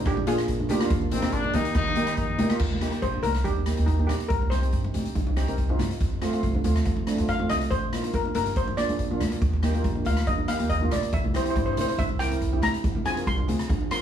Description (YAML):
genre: calypso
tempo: 141 BPM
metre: 4/4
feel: straight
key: Eb major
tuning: A4 = 440 Hz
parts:
  - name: steel pan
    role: melody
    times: 0.0-14.0 s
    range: D4 to C6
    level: -28 LUFS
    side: left 1 dB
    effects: none
  - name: steel pan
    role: accompaniment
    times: 0.0-14.0 s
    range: A3 to Bb4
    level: -29 LUFS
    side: right 1 dB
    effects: none
  - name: upright bass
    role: bass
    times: 0.0-14.0 s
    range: G1 to Eb3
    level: -28 LUFS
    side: equal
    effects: none
  - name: street-band drum kit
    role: drums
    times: 0.1-14.0 s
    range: crash cymbal, hi-hat, kick drum, rim click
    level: -29 LUFS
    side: equal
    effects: none
  - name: congas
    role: percussion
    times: 0.1-13.9 s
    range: none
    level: -33 LUFS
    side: equal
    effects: none
  - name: bright trumpet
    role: second line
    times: 1.1-2.6 s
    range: C4 to Eb4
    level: -28 LUFS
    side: left 3 dB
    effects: none
room: wet small room reverb, RT60 0.5 s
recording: heard from further back in the room, small room ambience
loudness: -23 LUFS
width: side -9 dB against mid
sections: 0.0-2.6 A section; 2.6-14.0 B section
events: steel pan solo 2.6-14.0; drum fill 8.9-9.4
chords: 0.0 Bb; 0.9 Eb; 4.3 Cm; 6.0 F; 7.7 Bbsus4; 8.6 Bb; 9.4 Eb; 11.1 C7; 12.8 Fm